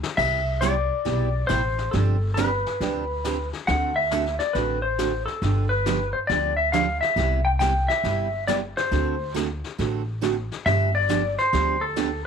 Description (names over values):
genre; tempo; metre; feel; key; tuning
country, western swing; 138 BPM; 4/4; swing 66% on 8ths; C major; A4 = 440 Hz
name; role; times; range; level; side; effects
vintage brush drum kit; drums; 0.0-12.3 s; brushed snare drum, crash cymbal, hi-hat, kick drum, snare drum; -34 LUFS; left 9 dB; none
clean lap steel guitar; melody; 0.2-12.2 s; A4 to G5; -24 LUFS; left 2 dB; none
picked steel-string acoustic guitar; accompaniment; 0.2-12.1 s; C3 to A4; -28 LUFS; right 12 dB; none
upright bass; bass; 0.2-12.2 s; G1 to D2; -26 LUFS; equal; none
room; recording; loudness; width
light reverb, small room ambience; 1960s-style stereo with parts hard left and right; -21 LUFS; side -7 dB against mid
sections
0.2-12.3 A section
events
drum fill 0.0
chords
0.2 Cmaj7; 1.9 G7sus4; 3.7 D7; 5.4 G7; 7.2 Cmaj7; 8.9 D7; 10.7 G7